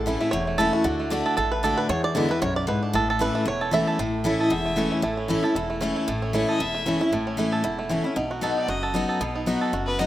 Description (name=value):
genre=bluegrass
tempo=230 BPM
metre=4/4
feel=swing 55% on 8ths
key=A lydian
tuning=A4 = 440 Hz
part: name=bluegrass banjo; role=melody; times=0.0-10.1 s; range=E3 to E5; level=-27 LUFS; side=right 3 dB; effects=none
part: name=picked steel-string acoustic guitar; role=accompaniment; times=0.0-10.1 s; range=E2 to F#4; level=-24 LUFS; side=left 1 dB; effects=none
part: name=upright bass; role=bass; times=0.0-10.1 s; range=E1 to E2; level=-34 LUFS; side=equal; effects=none
part: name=rich fiddle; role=melody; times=4.3-10.1 s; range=B4 to E5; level=-32 LUFS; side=left 2 dB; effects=none
room=moderate lush hall reverb, RT60 2.9 s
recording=rough home demo mix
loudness=-22 LUFS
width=side -13 dB against mid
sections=0.0-4.0 A section; 4.0-10.1 B section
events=five-string banjo solo 0.0-4.0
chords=0.0 A; 0.9 D; 1.9 E7; 2.9 A; 8.2 B